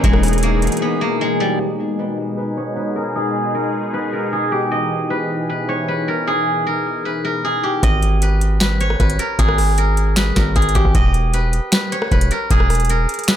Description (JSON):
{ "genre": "hip hop, trap", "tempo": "154 BPM", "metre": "4/4", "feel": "half-time", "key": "G# harmonic minor", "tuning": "A4 = 435 Hz", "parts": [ { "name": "steel-string zither", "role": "melody", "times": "0.0-13.4 s", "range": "G3 to D#5", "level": "-20 LUFS", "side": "equal", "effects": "low-pass filter, analog delay" }, { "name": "sweeping resonant pad", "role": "sustained chords", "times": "0.0-7.8 s", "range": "B2 to G#4", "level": "-23 LUFS", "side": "left 1 dB", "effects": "chorus, low-pass filter" }, { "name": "hard-hitting 808-style bass", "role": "bass", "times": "0.0-0.7, 7.8-13.1 s", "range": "E1 to G#1", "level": "-17 LUFS", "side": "equal", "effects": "none" }, { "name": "booming analog drum machine", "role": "drums", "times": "0.0-0.8, 7.8-13.4 s", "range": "finger snaps, hi-hat, kick drum, rim click, snare drum", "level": "-17 LUFS", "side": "equal", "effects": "none" } ], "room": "light reverb", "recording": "echo-heavy mix", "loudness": "-16 LUFS", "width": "side -10 dB against mid", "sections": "0.0-1.6 A section; 1.6-7.8 B section; 7.8-13.4 C section", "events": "break 0.8-1.6; filter sweep 1.6-7.8", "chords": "0.0 Emaj7; 1.6 G#m; 4.7 Emaj7; 7.8 G#m; 10.9 Emaj7" }